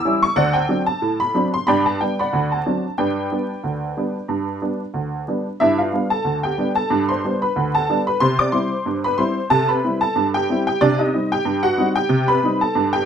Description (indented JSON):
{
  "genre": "ragtime piano",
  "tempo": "92 BPM",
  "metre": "2/4",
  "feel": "swing 56% on 16ths",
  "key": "G major",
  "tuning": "A4 = 440 Hz",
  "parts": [
    { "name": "honky-tonk upright piano", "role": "solo", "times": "0.0-13.1 s", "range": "D2 to E6", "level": "-17 LUFS", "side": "equal", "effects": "none" }
  ],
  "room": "light reverb",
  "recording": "dark, warm production, vinyl crackle",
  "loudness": "-17 LUFS",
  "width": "side -8 dB against mid",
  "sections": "0.0-5.6 A section; 5.6-13.1 B section",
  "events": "none",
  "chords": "0.4 D7; 1.7 G; 2.3 D7; 3.0 G; 5.6 G7; 8.2 C; 10.8 Cm",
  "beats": "| 0.37 1.02 | 1.67 2.33 | 2.98 3.63 | 4.29 4.95 | 5.60 6.25 | 6.91 7.56 | 8.21 8.86 | 9.51 10.16 | 10.81 11.46 | 12.11 12.76"
}